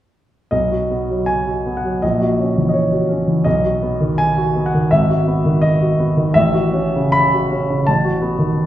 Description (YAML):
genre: classical, romantic character piece for solo piano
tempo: 72-88 BPM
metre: 2/4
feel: rubato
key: B major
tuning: A4 = 441 Hz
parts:
  - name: warm grand piano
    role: solo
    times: 0.5-8.7 s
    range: G#1 to B5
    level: -14 LUFS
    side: equal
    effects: none
room: wet recital hall reverb, RT60 1.7 s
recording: heard from further back in the room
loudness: -14 LUFS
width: side -12 dB against mid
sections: 0.5-8.7 A section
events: none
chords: 0.5 B; 2.0 F#7/A#; 3.5 B; 4.9 G#m7; 6.3 F#m7/A; 7.9 B7/A